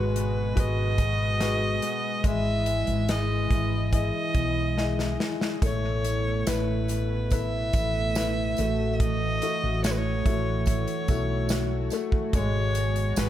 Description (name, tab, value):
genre	pop ballad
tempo	71 BPM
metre	4/4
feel	straight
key	E major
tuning	A4 = 440 Hz
part	warm violin	melody	0.0-13.3 s	B4 to E5	-30 LUFS	equal	tape echo
part	warm grand piano	accompaniment	0.0-13.3 s	G#3 to D#5	-33 LUFS	left 6 dB	tape echo
part	chorused pulse-width pad	sustained chords	0.0-13.3 s	B2 to F#4	-32 LUFS	right 1 dB	none
part	woody fretless electric bass	bass	0.0-13.3 s	G#1 to B1	-28 LUFS	equal	lush chorus
part	modern studio drum kit	drums	0.2-13.3 s	hi-hat, kick drum, snare drum	-29 LUFS	equal	none
part	tambourine	percussion	5.6-13.3 s	none	-42 LUFS	right 12 dB	none
room	studio ambience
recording	echo-heavy mix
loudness	-23 LUFS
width	side -12 dB against mid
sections	0.0-13.3 A section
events	drum fill 4.8-5.6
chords	0.0 G#m7; 2.2 Emaj7/G#; 5.6 Asus2; 8.6 F#m7/A; 12.3 G#m7